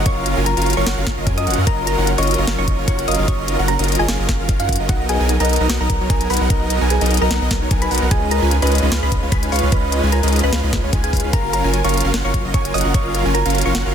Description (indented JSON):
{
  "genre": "future bass",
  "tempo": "149 BPM",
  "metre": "4/4",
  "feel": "swing 54% on 16ths, half-time",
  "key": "unclear",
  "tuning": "A4 = 440 Hz",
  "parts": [
    { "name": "airy dreamy lead", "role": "arpeggios", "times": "0.0-13.9 s", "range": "C#5 to G#5", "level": "-30 LUFS", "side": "equal", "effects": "chorus, sidechain pumping" },
    { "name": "soft round pluck", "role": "arpeggios", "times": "0.0-13.9 s", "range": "D#4 to A#5", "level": "-32 LUFS", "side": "right 2 dB", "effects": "none" },
    { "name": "supersaw chords", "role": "riff", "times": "0.0-13.9 s", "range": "F#3 to G#5", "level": "-21 LUFS", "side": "right 1 dB", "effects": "sidechain pumping" },
    { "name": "saturated sub bass", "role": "bass", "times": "0.0-13.9 s", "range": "F#1 to F#2", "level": "-20 LUFS", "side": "equal", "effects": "sidechain pumping" },
    { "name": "thumb-piano-like synth pluck", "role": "melody", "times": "0.1-13.8 s", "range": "E#4 to D#6", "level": "-23 LUFS", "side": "equal", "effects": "chorus, phaser, sidechain pumping, ping-pong delay" },
    { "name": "electronic kick drum", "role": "drums", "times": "0.1-13.0 s", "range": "none", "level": "-19 LUFS", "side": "equal", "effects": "none" },
    { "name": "trap drum kit", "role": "drums", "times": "0.1-13.8 s", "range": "hi-hat, snare drum", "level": "-23 LUFS", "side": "left 2 dB", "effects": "none" }
  ],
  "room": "digital ambience",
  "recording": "dense, heavily limited modern master",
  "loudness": "-15 LUFS",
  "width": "side -8 dB against mid",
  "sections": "0.0-13.9 A section",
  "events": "none",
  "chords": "0.0 D#m9/F#; 4.9 Bmaj7; 8.1 C#9; 11.3 D#m9/F#"
}